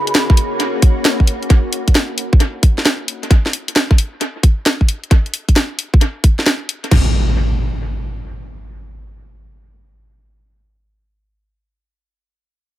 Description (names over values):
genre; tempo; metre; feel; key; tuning
UK garage, two-step garage; 133 BPM; 4/4; swing 66% on 16ths; unclear; A4 = 440 Hz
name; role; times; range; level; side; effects
soft string machine; sustained chords; 0.0-3.3 s; A#3 to F#4; -24 LUFS; left 1 dB; ensemble chorus, sidechain pumping
garage drum kit; drums; 0.1-7.0 s; crash cymbal, hi-hat, snare drum; -17 LUFS; equal; analog delay
electronic kick drum; drums; 0.3-7.0 s; none; -11 LUFS; equal; none
impact; sound effects; 6.9-11.5 s; none; -19 LUFS; equal; none
room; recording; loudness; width
little or no reverb; echo-heavy mix; -13 LUFS; side -14 dB against mid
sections
0.0-6.9 A section; 6.9-10.5 B section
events
none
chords
0.0 D#m7; 3.3 N.C.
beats
0.15 0.60 1.05 | 1.50 1.95 2.40 2.85 | 3.31 3.76 4.21 4.66 | 5.11 5.56 6.01 6.46 | 6.91 7.37 7.82 8.27 | 8.72 9.17 9.62 10.07